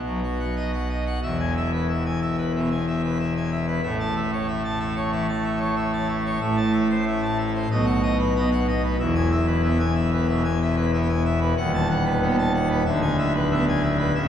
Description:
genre	classical, organ toccata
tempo	93 BPM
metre	4/4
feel	straight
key	E major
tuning	A4 = 440 Hz
part	pipe organ, full organ	solo	0.0-14.3 s	C#1 to A5	-21 LUFS	equal	none
room	wet cathedral reverb, RT60 4.2 s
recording	heard from further back in the room, small room ambience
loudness	-21 LUFS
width	side -9 dB against mid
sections	0.0-1.2 A section; 1.2-14.3 B section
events	none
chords	0.0 B; 1.2 E; 3.8 A; 6.4 Am; 7.7 B; 9.0 E; 11.6 B7/D#; 12.9 E7/D

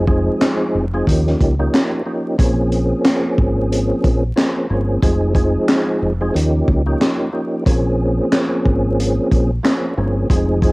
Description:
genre	hip hop, boom-bap hip-hop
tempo	91 BPM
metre	4/4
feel	swing 59% on 16ths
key	Bb dorian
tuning	A4 = 440 Hz
part	percussive tonewheel organ	accompaniment	0.0-10.7 s	F3 to Ab4	-18 LUFS	equal	chorus vibrato, fast rotary speaker, cassette tape, high-pass filter, low-pass filter
part	deep dub fingered electric bass	bass	0.0-10.7 s	F1 to Eb2	-19 LUFS	equal	none
part	crunchy breakbeat drum kit	drums	0.1-10.7 s	handclaps, hi-hat, kick drum, snare drum	-17 LUFS	equal	cassette tape
room	light reverb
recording	home recording on cassette, vinyl crackle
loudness	-14 LUFS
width	side -24 dB against mid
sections	0.0-10.7 A section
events	none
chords	0.0 Fm7; 1.1 Eb9; 2.4 Bbm9; 5.0 Fm7; 6.3 Eb9; 7.7 Bbm9

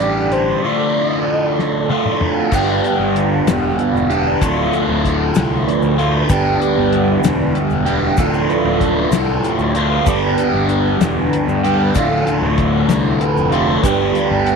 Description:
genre	psychedelic rock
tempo	64 BPM (dotted quarters)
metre	6/8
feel	straight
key	unclear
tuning	A4 = 440 Hz
part	overdriven synth lead	melody	0.0-1.9 s	C5 to D5	-21 LUFS	equal	chorus, slapback echo
part	tonewheel organ	sustained chords	0.0-14.6 s	F3 to B5	-22 LUFS	right 7 dB	overdrive, slow rotary speaker
part	overdriven electric guitar	riff	0.0-14.6 s	D2 to G4	-16 LUFS	equal	phaser
part	fuzz fingered electric bass	bass	0.0-14.6 s	D1 to G2	-21 LUFS	equal	overdrive
part	cloth-damped thuddy drum kit	drums	0.0-14.6 s	crash cymbal, hi-hat, kick drum, snare drum, toms	-21 LUFS	left 4 dB	none
part	deep rumbling drone	drone	3.7-14.6 s	D2 to D3	-26 LUFS	left 1 dB	none
part	tube shaker	percussion	2.5-14.2 s	none	-38 LUFS	left 11 dB	none
room	moderate echo chamber reverb, RT60 2.8 s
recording	1960s-style stereo with parts hard left and right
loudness	-14 LUFS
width	side -5 dB against mid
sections	0.0-2.5 A section; 2.5-14.6 B section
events	drum fill 1.6-2.5; tonewheel organ solo 2.5-14.6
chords	0.0 G; 0.6 Dm; 2.5 G; 4.4 Dm; 6.3 G; 8.2 Dm; 10.1 G; 12.0 Dm; 13.8 G

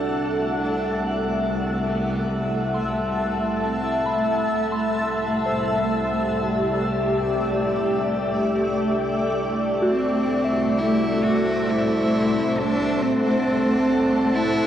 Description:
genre	ambient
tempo	68 BPM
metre	3/4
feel	straight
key	unclear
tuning	A4 = 438 Hz
part	warm cello	melody	0.0-4.3, 9.9-14.7 s	A3 to F#4	-26 LUFS	equal	none
part	granular cloud pad	sustained chords	0.0-14.7 s	A3 to A5	-22 LUFS	equal	built-in reverb
part	soft synth bell	arpeggios	0.0-14.7 s	F#4 to C6	-32 LUFS	equal	chorus, tape echo
part	dark studio cello section	bass	0.0-14.7 s	C2	-30 LUFS	equal	none
room	wet shimmer reverb, RT60 7.3 s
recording	worn, warbling old tape, cassette tape, warbly pitch drift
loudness	-20 LUFS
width	side -10 dB against mid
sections	0.0-14.7 A section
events	fade-in on synth bell 0.0-14.7; fade-in on cello 0.0-14.7; fade-out on cello section 0.0-14.7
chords	0.0 D7/C (rootless); 4.5 Cmaj7; 9.9 D7/C

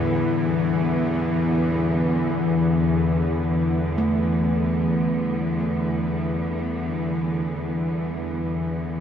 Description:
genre	dark ambient drone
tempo	free time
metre	none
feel	none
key	E minor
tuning	A4 = 440 Hz
part	rich studio cello section	sustained chords	0.0-9.0 s	E2 to B3	-28 LUFS	right 1 dB	none
part	gamelan-type bossed gongs	arpeggios	0.0-9.0 s	A2 to A3	-31 LUFS	right 3 dB	diffuse ambient delay
part	bowed-like drone	drone	0.0-9.0 s	E2 to E3	-22 LUFS	left 1 dB	built-in reverb
room	wet huge ambient reverb, RT60 7.0 s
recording	dark, warm production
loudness	-21 LUFS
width	side -8 dB against mid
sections	0.0-9.0 A section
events	fade-out 7.2-9.0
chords	0.0 Em

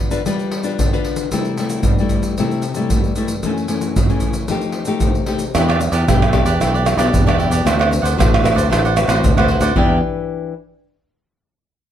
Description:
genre	samba and choro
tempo	114 BPM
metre	4/4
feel	straight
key	E minor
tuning	A4 = 440 Hz
part	nylon-string guitar	accompaniment	0.0-10.5 s	F#2 to B4	-20 LUFS	left 4 dB	none
part	egg shaker, pandeiro, surdo and tamborim	percussion	0.1-9.9 s	none	-18 LUFS	right 1 dB	none
part	cavaquinho	accompaniment	5.5-10.0 s	D4 to F#5	-22 LUFS	right 4 dB	none
part	growling fingered electric bass	bass	5.5-10.0 s	A1 to E2	-18 LUFS	equal	overdrive
room	light reverb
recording	none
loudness	-14 LUFS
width	side -10 dB against mid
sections	0.0-5.5 A section; 5.5-9.8 B section; 9.8-11.9 C section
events	none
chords	0.0 G7; 1.3 C6; 3.4 F#m7; 4.5 F9; 5.5 Em7; 7.7 D6; 9.8 Em7

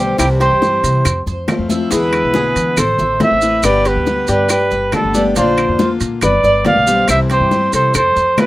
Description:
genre	latin, Cuban son and guajira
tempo	139 BPM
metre	4/4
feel	straight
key	C major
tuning	A4 = 440 Hz
part	breathy trumpet	melody	0.0-8.5 s	G4 to F5	-14 LUFS	right 1 dB	none
part	flamenco guitar	second line	0.0-8.5 s	D4 to D5	-23 LUFS	left 3 dB	none
part	picked steel-string acoustic guitar	accompaniment	0.0-8.5 s	B2 to G4	-20 LUFS	left 3 dB	none
part	Cuban tres	arpeggios	0.0-8.5 s	D4 to E5	-23 LUFS	right 1 dB	none
part	upright bass	bass	0.0-8.4 s	G1 to E3	-20 LUFS	equal	none
part	bongos	percussion	0.2-8.5 s	none	-24 LUFS	left 5 dB	none
part	claves	percussion	0.2-8.5 s	none	-24 LUFS	left 4 dB	none
part	congas	percussion	0.2-8.5 s	none	-23 LUFS	left 2 dB	none
part	maracas	percussion	0.2-8.5 s	none	-26 LUFS	right 5 dB	none
part	timbales	percussion	0.2-8.5 s	none	-26 LUFS	right 5 dB	none
room	light reverb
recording	rough home demo mix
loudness	-12 LUFS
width	side -16 dB against mid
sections	0.0-8.5 A section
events	none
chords	0.2 C; 1.1 F; 1.9 E7; 2.8 Am; 3.6 G; 5.4 Bb; 6.2 G; 7.1 C; 7.9 F

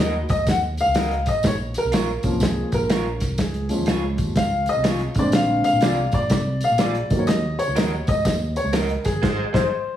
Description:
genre	uptempo 1960s-style soul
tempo	123 BPM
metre	4/4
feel	swing 64% on 8ths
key	unclear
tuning	A4 = 440 Hz
part	dark upright piano	accompaniment	0.0-10.0 s	D3 to Gb5	-22 LUFS	left 1 dB	none
part	electric guitar through a small old amp	stabs	0.0-9.7 s	F4 to Eb5	-27 LUFS	right 1 dB	none
part	smooth synth bass	bass	0.0-9.7 s	G1 to Eb2	-26 LUFS	right 1 dB	none
part	warm soul drum kit	drums	0.0-9.6 s	crash cymbal, hi-hat, kick drum, snare drum	-23 LUFS	equal	none
part	tambourine	percussion	0.3-9.1 s	none	-38 LUFS	right 2 dB	none
room	moderate large studio reverb, RT60 0.8 s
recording	heavily compressed radio sound, multiband compression, studio reverb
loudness	-19 LUFS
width	side -11 dB against mid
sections	0.0-10.0 A section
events	upright piano solo 0.0-10.0; band accent 9.2-10.0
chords	0.0 Ebm; 1.4 Bbm; 3.4 Db; 5.1 Bb7; 7.0 Ebm; 9.2 Ab

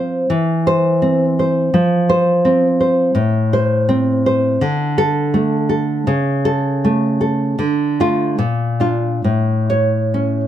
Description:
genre	romantic piece for solo classical guitar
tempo	65-85 BPM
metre	2/4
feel	rubato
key	D minor from 4.6 s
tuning	A4 = 440 Hz
part	nylon-string guitar	solo	0.0-10.5 s	A2 to C#5	-14 LUFS	equal	none
room	light reverb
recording	none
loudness	-14 LUFS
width	side -11 dB against mid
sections	0.0-10.5 A section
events	none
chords	0.3 C/E; 1.7 F5; 3.2 Am; 4.6 D5; 6.1 A/C#; 7.6 Dm; 8.4 Bb; 9.3 A

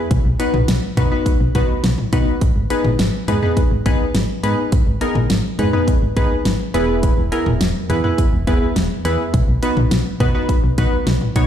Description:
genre	synth-pop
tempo	104 BPM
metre	4/4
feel	straight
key	G# minor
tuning	A4 = 440 Hz
part	solid FM bass	bass	0.1-11.5 s	E1 to B2	-20 LUFS	equal	none
part	pop drum kit	drums	0.1-11.5 s	hi-hat, kick drum, snare drum, toms	-18 LUFS	equal	none
part	warm analog keys	accompaniment	0.4-11.5 s	B3 to C#5	-20 LUFS	left 1 dB	chorus
room	light reverb, digital ambience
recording	played on a big sound system in a bare room, large studio reverb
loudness	-15 LUFS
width	side -10 dB against mid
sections	0.0-11.5 A section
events	none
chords	0.1 B; 2.4 G#m; 6.7 E; 9.3 B

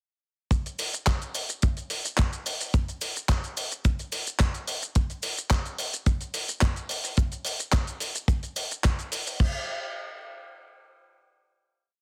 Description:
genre	nu-disco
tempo	108 BPM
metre	4/4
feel	straight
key	none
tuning	none
part	dusty soul sampler-style drum kit	drums	0.5-9.5 s	crash cymbal, handclaps, hi-hat, shaker	-32 LUFS	equal	overdrive, small room reverb
part	kick drum	drums	0.5-9.5 s	none	-26 LUFS	equal	small room reverb, soft clipping on snare
part	maracas	percussion	0.5-9.4 s	none	-41 LUFS	equal	none
room	studio reverb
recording	dense, heavily limited modern master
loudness	-28 LUFS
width	mono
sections	0.5-9.4 groove; 9.4-11.6 final hit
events	none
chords	none

